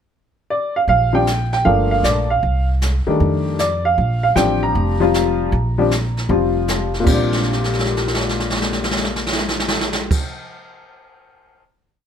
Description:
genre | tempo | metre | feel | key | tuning
jazz piano trio | 155 BPM | 4/4 | swing 67% on 8ths | Bb major | A4 = 439 Hz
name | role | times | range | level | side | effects
warm upright piano | melody | 0.5-10.2 s | Bb2 to Bb5 | -18 LUFS | left 1 dB | plate reverb
upright bass | bass | 0.9-10.1 s | F1 to F2 | -21 LUFS | right 1 dB | none
jazz brush drum kit | drums | 0.9-11.6 s | brushed snare drum, crash cymbal, hi-hat, kick drum, snare drum | -21 LUFS | right 1 dB | none
room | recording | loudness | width
light reverb | none | -16 LUFS | side -8 dB against mid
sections
0.0-0.9 pickup bar; 0.9-7.1 A section; 7.1-10.2 final chord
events
drum fill 7.3-10.1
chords
0.0 N.C.; 0.9 Bb5; 1.7 Gm9; 2.4 N.C.; 3.2 F13; 4.0 Bb69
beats
0.10 0.49 | 0.88 1.26 1.65 2.04 | 2.43 2.81 3.20 3.59 | 3.98 4.36 4.75 5.13 | 5.52 5.91 6.29 6.68 | 7.07 7.45 7.84 8.23 | 8.62 9.00 9.39 9.78

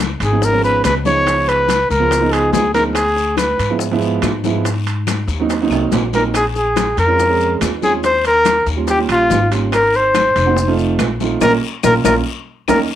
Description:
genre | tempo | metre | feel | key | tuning
Afro-Cuban jazz | 142 BPM | 4/4 | straight | unclear | A4 = 440 Hz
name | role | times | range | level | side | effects
upright bass | bass | 0.0-12.8 s | F1 to Ab2 | -21 LUFS | left 1 dB | none
bongos | percussion | 0.0-12.8 s | none | -25 LUFS | left 10 dB | none
congas | percussion | 0.0-12.8 s | none | -28 LUFS | left 11 dB | none
guiro | percussion | 0.0-12.8 s | none | -31 LUFS | left 12 dB | none
maracas | percussion | 0.0-12.8 s | none | -31 LUFS | left 11 dB | none
mellow trumpet | melody | 0.2-12.8 s | F4 to Db5 | -14 LUFS | left 1 dB | cassette tape
timbales | percussion | 0.2-12.8 s | none | -24 LUFS | right 9 dB | none
warm grand piano | accompaniment | 0.3-12.8 s | F3 to Ab4 | -19 LUFS | right 6 dB | cassette tape
claves | percussion | 2.9-12.8 s | none | -30 LUFS | left 11 dB | none
room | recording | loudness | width
moderate studio reverb, RT60 0.6 s | home recording on cassette | -13 LUFS | side -11 dB against mid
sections
0.0-13.0 A section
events
drum fill 5.7-6.3, 12.5-13.0; band accent 11.4-13.0; grand piano fill 12.3-13.0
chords
0.0 Db9; 3.0 Ddim7; 4.6 Ab9; 6.3 Bbm7; 8.0 Eb9; 9.7 Ab9; 10.6 F7; 11.4 Bbm; 12.3 Eb5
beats
0.42 0.84 | 1.26 1.69 2.11 2.53 | 2.96 3.38 3.80 4.23 | 4.65 5.07 5.50 5.92 | 6.34 6.76 7.19 7.61 | 8.03 8.46 8.88 9.30 | 9.73 10.15 10.57 10.99 | 11.42 11.84 12.26 12.69

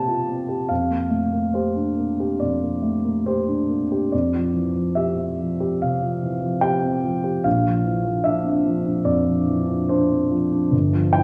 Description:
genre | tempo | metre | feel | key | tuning
classical, impressionist solo piano | 72 BPM | 4/4 | uneven beats, rubato | F major | A4 = 440 Hz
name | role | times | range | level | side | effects
warm grand piano | solo | 0.0-11.2 s | G1 to A5 | -22 LUFS | equal | none
room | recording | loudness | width
moderate scoring stage reverb, RT60 1.6 s | studio reverb | -22 LUFS | mono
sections
0.0-11.2 A section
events
none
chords
0.0 Fadd9; 0.7 Gm9/F; 4.1 Fsus2; 7.5 Bbadd9; 10.7 G7(no3)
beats
| 0.70 1.56 2.42 3.27 | 4.12 4.98 5.81 6.63 | 7.45 8.27 9.09 9.91 | 10.72

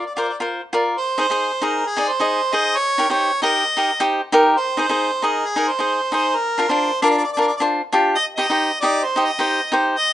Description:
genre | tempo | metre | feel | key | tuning
calypso | 133 BPM | 4/4 | swing 54% on 16ths | unclear | A4 = 440 Hz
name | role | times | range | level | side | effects
warm harmonica | melody | 0.0-10.1 s | Ab4 to Eb5 | -20 LUFS | right 1 dB | none
cavaquinho | accompaniment | 0.0-10.0 s | D4 to Eb5 | -18 LUFS | equal | plate reverb
room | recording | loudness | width
moderate studio reverb, RT60 0.6 s | rough home demo mix, nothing above 10.3 kHz | -16 LUFS | side -12 dB against mid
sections
1.0-10.1 A section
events
none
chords
0.0 Bb; 1.0 Ab; 2.8 Eb; 4.6 Ab; 6.4 Bb6; 8.2 Cm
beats
0.06 0.51 | 0.96 1.41 1.86 2.31 | 2.76 3.21 3.66 4.11 | 4.56 5.01 5.46 5.91 | 6.36 6.81 7.26 7.71 | 8.16 8.61 9.06 9.51 | 9.96

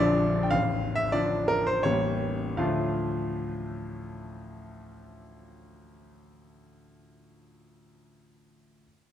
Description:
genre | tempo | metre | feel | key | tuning
classical, romantic triple-time dance for piano with dotted rhythms | 76-106 BPM | 3/4 | rubato | D minor | A4 = 438 Hz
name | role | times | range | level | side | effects
bright concert grand piano | solo | 0.0-8.9 s | A0 to G5 | -26 LUFS | left 1 dB | none
room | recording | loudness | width
moderate scoring stage reverb, RT60 1.5 s | dark, warm production | -25 LUFS | side -10 dB against mid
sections
0.0-2.6 A section; 2.6-6.8 B section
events
slowing down 0.0-2.6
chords
0.0 Bb; 0.5 Dm/A; 1.9 A7b9; 2.6 Dm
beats
| 0.52 1.15 1.87 | 2.61 3.32 4.05 | 4.73 5.45 6.15

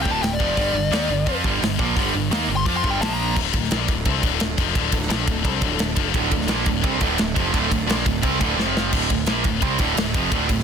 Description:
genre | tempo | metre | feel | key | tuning
heavy metal | 173 BPM | 4/4 | straight | D minor | A4 = 444 Hz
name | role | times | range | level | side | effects
dark smooth lead guitar | melody | 0.0-3.4 s | D5 to D6 | -26 LUFS | left 4 dB | overdrive, tape echo
distorted electric guitar | riff | 0.0-3.4, 6.1-10.6 s | D2 to F4 | -24 LUFS | right 14 dB | overdrive
heavy high-gain guitar | riff | 0.0-10.6 s | D2 to F4 | -24 LUFS | left 16 dB | distortion
fuzz picked electric bass | bass | 0.0-10.6 s | D1 to F2 | -26 LUFS | equal | overdrive
modern studio drum kit | drums | 0.1-10.6 s | crash cymbal, hi-hat, kick drum, ride cymbal, snare drum | -24 LUFS | equal | none
muted studio string section | sustained chords | 3.4-8.9 s | F3 to C5 | -33 LUFS | right 2 dB | none
room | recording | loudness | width
light reverb, small room ambience | dense, heavily limited modern master | -18 LUFS | side -7 dB against mid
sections
0.0-3.4 A section; 3.4-8.9 B section; 8.9-10.6 B section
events
lead electric guitar solo 0.0-3.4; drum fill 8.6-8.9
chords
0.0 Dm; 0.6 G5; 3.0 Bb5; 3.4 Dm; 8.6 F5; 8.9 Dm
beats
0.23 | 0.58 0.93 1.28 1.63 | 1.98 2.32 2.67 3.02 | 3.37 3.72 4.06 4.41 | 4.76 5.11 5.46 5.80 | 6.15 6.50 6.84 7.19 | 7.54 7.89 8.23 8.58 | 8.93 9.28 9.62 9.97 | 10.32

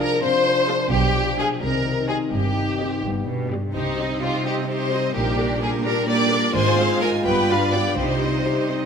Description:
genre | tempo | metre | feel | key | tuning
cinematic, playful, whimsical film cue | 85 BPM (dotted quarters) | 6/8 | straight | C minor | A4 = 441 Hz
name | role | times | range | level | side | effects
rich chamber violin section | melody | 0.0-8.9 s | Bb4 to Ab5 | -32 LUFS | left 2 dB | none
rich chamber violin section | second line | 0.0-8.7 s | Eb4 to D5 | -23 LUFS | left 2 dB | none
rich chamber viola section | accompaniment | 0.0-8.9 s | Ab3 to Bb4 | -28 LUFS | right 4 dB | none
dark French horn section | sustained chords | 0.0-8.9 s | Eb3 to F4 | -27 LUFS | left 2 dB | none
concert harp | arpeggios | 0.0-8.9 s | G2 to F5 | -29 LUFS | left 5 dB | none
warm studio cello section | bass | 0.0-8.9 s | G2 to C3 | -28 LUFS | right 3 dB | none
rich symphonic double bass section | bass | 0.9-8.4 s | G1 to C2 | -28 LUFS | right 4 dB | none
room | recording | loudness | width
wet scoring stage reverb, RT60 2.1 s | none | -19 LUFS | side -6 dB against mid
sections
0.0-8.9 A section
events
none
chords
0.0 Dm7b5/C; 0.9 G7/B; 1.6 Cm; 2.3 Cm/G; 3.0 G; 3.7 Cm; 5.2 Gm/Bb; 6.6 Fm/Ab; 7.3 G7; 8.0 Cm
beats
0.22 | 0.92 1.62 | 2.33 3.04 | 3.75 4.45 | 5.16 5.85 | 6.55 7.26 | 7.98 8.69

